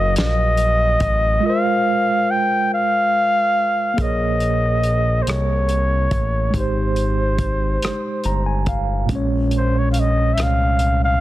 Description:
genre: slow six-eight R&B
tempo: 47 BPM (dotted quarters)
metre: 6/8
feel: straight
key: unclear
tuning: A4 = 440 Hz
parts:
  - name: breathy flugelhorn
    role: melody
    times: 0.0-11.2 s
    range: C5 to G5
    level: -19 LUFS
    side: equal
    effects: none
  - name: mellow tine electric piano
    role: accompaniment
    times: 0.0-11.2 s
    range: Bb2 to Bb5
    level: -23 LUFS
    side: right 2 dB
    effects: medium stereo tremolo
  - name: smooth gliding synth bass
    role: bass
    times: 0.0-11.2 s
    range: Gb1 to C2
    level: -20 LUFS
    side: equal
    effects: none
  - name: warm soul drum kit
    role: drums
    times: 0.2-11.0 s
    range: hi-hat, kick drum, rim click, snare drum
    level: -24 LUFS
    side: equal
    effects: none
room: little or no reverb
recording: dense, heavily limited modern master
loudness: -16 LUFS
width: side -15 dB against mid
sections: 0.0-4.0 A section; 4.0-11.2 B section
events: silent gap 1.4-4.0; tine electric piano fill 7.8-9.1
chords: 0.0 Gbmaj7; 1.4 Ab69; 4.0 Bbm9; 6.5 Abmaj7; 9.1 Bbm9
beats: 0.15 | 1.43 2.71 | 3.98 5.26 | 6.54 7.81 | 9.09 10.37

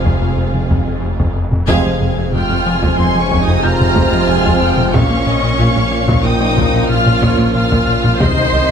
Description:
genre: cinematic, hybrid orchestral and electronic film score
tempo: 92 BPM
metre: 5/4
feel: straight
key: F minor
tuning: A4 = 440 Hz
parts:
  - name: rich symphonic violin section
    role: melody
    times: 0.0-8.7 s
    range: F5 to C7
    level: -22 LUFS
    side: left 2 dB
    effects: none
  - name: warm symphonic violin section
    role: second line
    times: 0.0-8.7 s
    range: Ab4 to Bb5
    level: -22 LUFS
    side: equal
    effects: none
  - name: rich symphonic viola section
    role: accompaniment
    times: 0.0-8.7 s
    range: C4 to C5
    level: -21 LUFS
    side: right 2 dB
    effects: none
  - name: clear trombone section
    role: sustained chords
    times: 0.0-8.7 s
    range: Bb2 to Ab3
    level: -22 LUFS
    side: right 5 dB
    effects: none
  - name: mellow French horn section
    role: sustained chords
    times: 0.0-8.7 s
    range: Ab3 to Eb4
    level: -22 LUFS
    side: left 5 dB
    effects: none
  - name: clear symphonic cello section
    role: bass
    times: 0.0-8.6 s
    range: F2 to C3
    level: -22 LUFS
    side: right 3 dB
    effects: none
  - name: snarling distorted saw bass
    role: bass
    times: 0.0-8.7 s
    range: F1 to C2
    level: -22 LUFS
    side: equal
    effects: distortion
  - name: warm symphonic double bass section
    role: bass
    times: 0.0-8.6 s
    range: F1 to C2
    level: -23 LUFS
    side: right 4 dB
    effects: none
  - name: rubbery square bass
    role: riff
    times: 0.1-8.7 s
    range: C2 to Bb3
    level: -19 LUFS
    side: left 3 dB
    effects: none
  - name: taiko ensemble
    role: drums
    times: 0.1-8.7 s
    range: none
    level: -19 LUFS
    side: equal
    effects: none
  - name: felt-muted upright piano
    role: texture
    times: 1.7-8.7 s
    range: Eb5 to G6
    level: -28 LUFS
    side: equal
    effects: none
room: moderate scoring stage reverb, RT60 2.1 s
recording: none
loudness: -12 LUFS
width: side -7 dB against mid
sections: 0.0-1.7 A section; 1.7-8.7 A section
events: band accent 1.7-2.3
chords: 0.0 Fm; 1.7 Fmadd9; 4.9 Bbm; 8.2 Ab/C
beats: 0.38 1.03 | 1.68 2.34 2.99 3.64 4.29 | 4.94 5.60 6.25 6.90 7.55 | 8.21

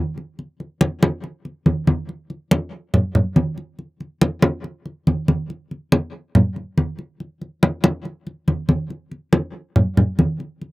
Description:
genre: latin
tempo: 141 BPM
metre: 4/4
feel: straight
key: none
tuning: none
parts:
  - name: congas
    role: percussion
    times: 0.2-10.7 s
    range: none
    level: -17 LUFS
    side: equal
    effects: none
room: light reverb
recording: recorded outdoors, with no room sound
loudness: -18 LUFS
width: side -20 dB against mid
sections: 0.0-5.5 A section; 5.5-10.7 B section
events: none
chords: none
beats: | 0.39 0.81 1.24 1.67 | 2.09 2.52 2.94 3.37 | 3.79 4.22 4.65 5.07 | 5.50 5.92 6.35 6.78 | 7.20 7.63 8.06 8.48 | 8.91 9.34 9.76 10.19 | 10.62

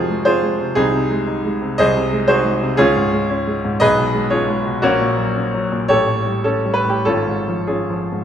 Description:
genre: classical, romantic character piece for solo piano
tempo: 92-124 BPM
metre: 4/4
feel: rubato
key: Db major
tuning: A4 = 440 Hz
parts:
  - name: bright grand piano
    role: solo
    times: 0.0-8.2 s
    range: Ab1 to Eb5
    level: -15 LUFS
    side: equal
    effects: none
room: wet recital hall reverb, RT60 1.7 s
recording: none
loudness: -15 LUFS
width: side -9 dB against mid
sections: 0.0-8.2 A section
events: none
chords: 0.0 Fm; 0.8 Ab/C; 1.8 Ab7/C; 2.8 Db; 3.8 Db7/Cb; 4.8 Gb/Bb; 5.9 A7; 7.1 Db/Ab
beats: 0.27 | 0.76 1.27 1.78 2.29 | 2.79 3.31 3.82 4.32 | 4.83 5.36 5.89 6.45 | 7.07 7.69

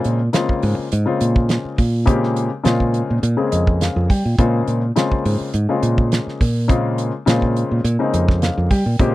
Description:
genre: electric jazz fusion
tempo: 104 BPM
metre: 4/4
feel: straight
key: Bb dorian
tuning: A4 = 441 Hz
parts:
  - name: warm concert grand piano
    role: accompaniment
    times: 0.0-9.1 s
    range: Db3 to G5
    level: -21 LUFS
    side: left 3 dB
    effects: none
  - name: damped 70s drum kit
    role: drums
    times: 0.0-9.1 s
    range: hi-hat, kick drum, snare drum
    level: -19 LUFS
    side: right 1 dB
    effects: none
  - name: fingered electric bass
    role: bass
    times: 0.1-9.1 s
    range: F2 to G3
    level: -18 LUFS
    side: right 1 dB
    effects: none
room: little or no reverb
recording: dry, close 1970s-style studio recording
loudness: -16 LUFS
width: side -16 dB against mid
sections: 0.0-9.1 A section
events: grand piano fill 3.2-4.4, 7.8-9.0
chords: 0.0 Bbm9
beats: 0.34 0.92 1.50 | 2.07 2.65 3.23 3.81 | 4.38 4.96 5.54 6.12 | 6.69 7.27 7.84 8.42 | 8.99

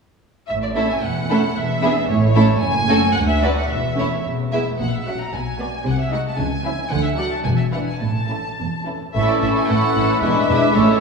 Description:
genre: quick classical-period movement for symphony orchestra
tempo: 112 BPM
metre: 2/4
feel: rubato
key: A major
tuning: A4 = 440 Hz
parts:
  - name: rich studio violin section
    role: melody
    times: 0.5-11.0 s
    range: C#5 to A#5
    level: -24 LUFS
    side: equal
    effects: none
  - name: rich studio double bass section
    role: bass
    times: 0.5-10.8 s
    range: E1 to D2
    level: -24 LUFS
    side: right 1 dB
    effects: none
  - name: warm studio cello section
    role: bass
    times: 0.5-10.8 s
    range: D2 to D3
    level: -24 LUFS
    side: right 2 dB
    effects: none
  - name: clear studio violin section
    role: second line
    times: 0.8-11.0 s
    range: E4 to E5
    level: -26 LUFS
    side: left 1 dB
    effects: none
  - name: warm studio viola section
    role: accompaniment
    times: 0.8-11.0 s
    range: E3 to F#4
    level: -23 LUFS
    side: right 1 dB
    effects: none
  - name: mellow hollow large flute ensemble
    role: second line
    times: 9.1-11.0 s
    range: C#6 to D6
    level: -25 LUFS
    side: equal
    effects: none
  - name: warm oboe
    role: second line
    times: 9.1-11.0 s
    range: A4 to B4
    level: -25 LUFS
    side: right 3 dB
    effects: none
  - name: mellow bassoon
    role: accompaniment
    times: 9.1-11.0 s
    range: G#3 to A3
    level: -26 LUFS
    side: right 5 dB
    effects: none
  - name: clear clarinet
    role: second line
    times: 9.2-11.0 s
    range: E4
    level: -27 LUFS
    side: left 2 dB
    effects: none
  - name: mellow French horn section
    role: sustained chords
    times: 9.2-11.0 s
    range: G#3 to D4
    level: -23 LUFS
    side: left 6 dB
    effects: none
room: wet scoring stage reverb, RT60 1.7 s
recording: studio ambience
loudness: -17 LUFS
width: side -4 dB against mid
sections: 0.5-9.1 A section; 9.1-11.0 A section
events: none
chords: 0.5 A; 1.6 E7; 2.1 A; 2.6 F#m; 3.1 Bm/D; 3.7 A/E; 4.2 E; 4.8 F#7/A#; 5.3 Bm; 5.9 G#7/B#; 6.4 C#m; 6.9 D; 7.5 E5; 8.0 A; 10.2 E7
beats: | 0.48 1.02 | 1.56 2.08 | 2.61 3.15 | 3.69 4.25 | 4.80 5.34 | 5.86 6.38 | 6.91 7.45 | 8.01 8.58 | 9.15 9.69 | 10.22 10.75

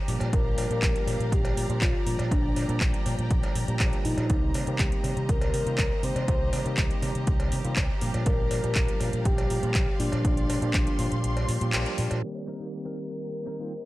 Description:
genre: nu-disco, nu disco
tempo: 121 BPM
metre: 4/4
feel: straight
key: unclear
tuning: A4 = 441 Hz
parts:
  - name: clear symphonic violin section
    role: sustained chords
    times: 0.0-13.9 s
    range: C4 to C6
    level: -39 LUFS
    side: equal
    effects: sidechain pumping, low-pass filter
  - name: bell-like tine electric piano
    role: accompaniment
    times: 0.1-13.7 s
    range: Eb3 to G4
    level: -34 LUFS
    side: equal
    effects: medium stereo tremolo, sidechain pumping
  - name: fingered electric bass with an envelope filter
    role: bass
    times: 0.1-12.2 s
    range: Bb1 to C3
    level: -29 LUFS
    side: equal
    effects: tube saturation, sidechain pumping
  - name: house drum kit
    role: drums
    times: 0.1-12.2 s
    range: handclaps, hi-hat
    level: -33 LUFS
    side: equal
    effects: overdrive
  - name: cowbell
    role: percussion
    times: 0.2-12.5 s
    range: none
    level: -40 LUFS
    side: right 3 dB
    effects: none
  - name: soft octave-layered synth lead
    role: melody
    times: 0.3-13.9 s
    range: D4 to C5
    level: -32 LUFS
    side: left 2 dB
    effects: chorus, analog delay
  - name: electronic kick drum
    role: drums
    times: 0.3-10.8 s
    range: none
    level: -27 LUFS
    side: equal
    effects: overdrive
  - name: semi-hollow electric guitar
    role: riff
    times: 12.5-13.7 s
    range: C4 to Bb4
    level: -43 LUFS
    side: left 2 dB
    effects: analog chorus, low-pass filter
room: digital ambience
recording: dry, gritty hardware recording, low-pass filter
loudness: -24 LUFS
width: side -17 dB against mid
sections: 0.0-12.2 A section; 12.2-13.9 B section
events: kick drops out 11.2-12.2; band accent 11.7; filter sweep on clean electric guitar 12.2-13.9; filter sweep on violin section 12.2-13.9; filter sweep 12.2-13.9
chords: 0.1 Bb6; 4.3 Cm7; 8.0 Bb6; 12.2 Cm7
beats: | 0.33 0.83 1.32 1.82 | 2.31 2.81 3.31 3.80 | 4.30 4.79 5.29 5.79 | 6.28 6.78 7.27 7.77 | 8.27 8.76 9.26 9.75 | 10.25 10.74 11.24 11.74 | 12.23 12.73 13.22 13.72

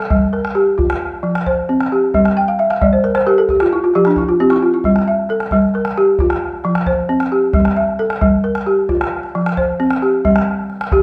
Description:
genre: west african traditional, West African string and xylophone music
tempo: 89 BPM (dotted quarters)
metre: 12/8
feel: straight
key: unclear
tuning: A4 = 442 Hz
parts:
  - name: balafon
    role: arpeggios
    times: 0.0-11.0 s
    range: F3 to G5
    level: -16 LUFS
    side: equal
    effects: none
  - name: calabash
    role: percussion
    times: 0.1-11.0 s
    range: none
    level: -24 LUFS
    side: equal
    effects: none
room: moderate studio reverb, RT60 0.6 s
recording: worn, warbling old tape, cassette tape, warbly pitch drift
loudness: -15 LUFS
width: mono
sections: 0.0-10.2 A section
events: balafon fill 2.4-4.8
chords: 0.0 Gm; 0.8 F5; 2.1 N.C.; 3.5 F5; 4.8 Gm; 6.2 F5; 7.5 Gm; 8.9 F5; 10.2 N.C.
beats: 0.10 0.78 1.46 | 2.13 2.81 3.48 4.16 | 4.84 5.51 6.19 6.87 | 7.54 8.22 8.89 9.57 | 10.25 10.92

